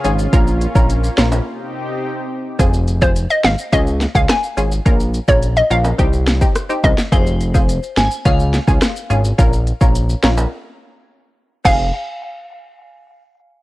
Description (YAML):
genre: dancehall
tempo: 106 BPM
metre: 4/4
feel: straight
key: F minor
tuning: A4 = 440 Hz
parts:
  - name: glassy synth bell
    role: second line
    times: 0.0-0.3, 7.1-11.9 s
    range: C5 to Ab5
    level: -26 LUFS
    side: left 1 dB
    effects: chorus, tremolo, analog delay
  - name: punchy chord stab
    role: accompaniment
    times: 0.0-11.9 s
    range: C4 to Bb4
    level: -22 LUFS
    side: equal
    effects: chorus
  - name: lush unison pad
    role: sustained chords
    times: 0.0-2.6 s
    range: C3 to Ab4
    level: -24 LUFS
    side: equal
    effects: chorus, sidechain pumping
  - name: fat analog bass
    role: bass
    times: 0.0-11.9 s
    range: F1 to Db2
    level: -17 LUFS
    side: equal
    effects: none
  - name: afro-pop drum kit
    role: drums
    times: 0.0-11.8 s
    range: crash cymbal, hi-hat, kick drum, rim click, snare drum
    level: -15 LUFS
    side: equal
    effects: none
  - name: maracas and timbales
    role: percussion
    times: 0.0-11.9 s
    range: none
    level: -30 LUFS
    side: equal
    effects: none
  - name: hollow square pluck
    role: melody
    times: 3.0-6.9, 11.7-11.9 s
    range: C5 to Ab5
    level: -18 LUFS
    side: equal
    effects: chorus, analog delay
room: little or no reverb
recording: dry, gritty hardware recording, cassette tape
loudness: -13 LUFS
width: side -18 dB against mid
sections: 0.0-2.6 A section; 2.6-11.7 B section; 11.7-13.6 C section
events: break 1.5-2.6, 10.5-11.7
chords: 0.3 Bbm; 1.5 Cm; 2.6 Fm; 3.7 Db; 4.9 Bbm; 6.0 Cm; 7.1 Fm; 8.3 Db; 9.4 Bbm; 10.5 N.C.; 11.7 Fm